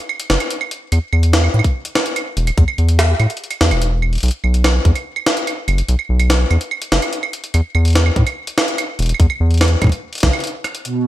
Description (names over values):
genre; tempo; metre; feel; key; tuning
IDM; 145 BPM; 4/4; straight; unclear; A4 = 440 Hz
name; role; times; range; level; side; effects
jungle sampler-style drum kit; drums; 0.1-10.9 s; claves, hi-hat, rim click, snare drum, toms; -19 LUFS; equal; studio reverb, gated reverb, ping-pong delay
round analog bass; bass; 0.3-10.3 s; E1 to A2; -14 LUFS; equal; none
electronic kick drum; drums; 1.6-4.9, 8.2-10.3 s; none; -15 LUFS; equal; studio reverb
warm analog pad; sustained chords; 10.9-11.1 s; B2; -17 LUFS; right 4 dB; chorus
bubbling stepped-filter texture; texture; 10.9-11.1 s; A5; -50 LUFS; right 6 dB; none
room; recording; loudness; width
light reverb; bright 1980s-style digital production; -14 LUFS; side -14 dB against mid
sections
0.0-10.9 A section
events
break 10.4-10.9; drum fill 10.6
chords
0.0 N.C.; 4.2 B5; 7.5 E5